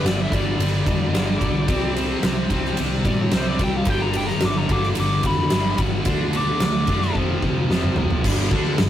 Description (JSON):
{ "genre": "hard rock", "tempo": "110 BPM", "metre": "4/4", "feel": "straight", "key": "unclear", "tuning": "A4 = 440 Hz", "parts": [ { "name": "high-gain lead guitar", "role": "melody", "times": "0.0-7.2 s", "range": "C5 to D6", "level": "-27 LUFS", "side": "left 1 dB", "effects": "distortion" }, { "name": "scooped high-gain guitar", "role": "riff", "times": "0.0-8.9 s", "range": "F2 to D4", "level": "-30 LUFS", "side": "left 1 dB", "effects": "none" }, { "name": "tight distorted guitar", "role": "riff", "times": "0.0-8.9 s", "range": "F2 to D4", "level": "-27 LUFS", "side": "equal", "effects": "distortion" }, { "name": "picked electric bass", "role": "bass", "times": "0.0-8.9 s", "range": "F1 to A2", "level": "-26 LUFS", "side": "equal", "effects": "none" }, { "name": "distorted electric guitar", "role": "riff", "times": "0.1-8.9 s", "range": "F2 to D4", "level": "-28 LUFS", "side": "equal", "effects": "distortion" }, { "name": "huge arena drum kit", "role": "drums", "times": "0.1-8.9 s", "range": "crash cymbal, kick drum, ride cymbal, snare drum, toms", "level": "-22 LUFS", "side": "equal", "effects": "none" } ], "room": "moderate booth ambience, RT60 0.2 s", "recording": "rough rehearsal-room recording, warm saturation", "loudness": "-18 LUFS", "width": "side -11 dB against mid", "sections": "0.0-8.2 A section", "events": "lead electric guitar solo 0.0-8.2; drum fill 7.1-8.2", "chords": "0.0 G; 1.7 C5; 3.9 G; 6.1 D; 7.1 F5; 8.2 G5", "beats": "0.04 0.59 1.13 | 1.68 2.23 2.78 3.32 | 3.87 4.42 4.96 5.51 | 6.05 6.60 7.15 7.69 | 8.24 8.78" }